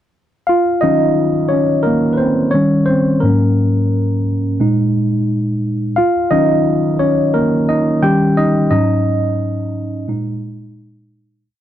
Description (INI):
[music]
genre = soul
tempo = 87 BPM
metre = 4/4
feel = swing 58% on 16ths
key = Eb dorian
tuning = A4 = 440 Hz
[part]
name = tine electric piano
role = solo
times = 0.5-11.5 s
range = Ab2 to G5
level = -13 LUFS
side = equal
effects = phaser
[sound]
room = moderate booth ambience, RT60 0.2 s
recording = dry, close 1970s-style studio recording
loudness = -13 LUFS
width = side -11 dB against mid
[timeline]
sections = 0.5-11.5 verse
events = tine electric piano solo 0.5-11.5; fade-out 8.7-11.5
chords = 0.5 Ebm9; 2.5 Eb7; 3.2 Ab9sus4; 4.6 Bb7sus4; 6.0 Ebm9; 8.0 Eb7; 8.7 Ab7sus4; 10.1 Bb7sus4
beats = | 0.48 1.17 1.86 2.54 | 3.23 3.92 4.60 5.29 | 5.97 6.66 7.34 8.03 | 8.72 9.40 10.09 10.78